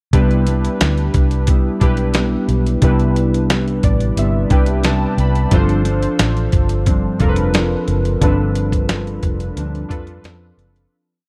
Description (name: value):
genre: indie pop, bedroom pop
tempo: 89 BPM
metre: 4/4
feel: straight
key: C major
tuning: A4 = 440 Hz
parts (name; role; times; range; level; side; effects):
- mellow electric guitar; accompaniment; 0.1-11.3 s; G2 to E4; -23 LUFS; equal; subtle chorus, warbly pitch drift
- warbly lo-fi synth keys; accompaniment; 0.1-10.9 s; D4 to B5; -25 LUFS; equal; chorus, cassette tape
- vintage muted fingered electric bass; bass; 0.1-10.8 s; F1 to F2; -20 LUFS; equal; none
- dusty soul sampler-style drum kit; drums; 0.1-10.9 s; hi-hat, kick drum, snare drum; -19 LUFS; equal; none
room: little or no reverb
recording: dry, close 1970s-style studio recording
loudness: -16 LUFS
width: mono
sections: 0.1-10.9 verse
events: synth keys fill 3.5-5.5; fade-out 8.2-10.9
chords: 0.1 Cmaj7; 5.5 G7sus4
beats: | 0.13 0.80 1.48 2.15 | 2.82 3.50 4.17 4.84 | 5.52 6.19 6.87 7.54 | 8.21 8.89 9.56 10.24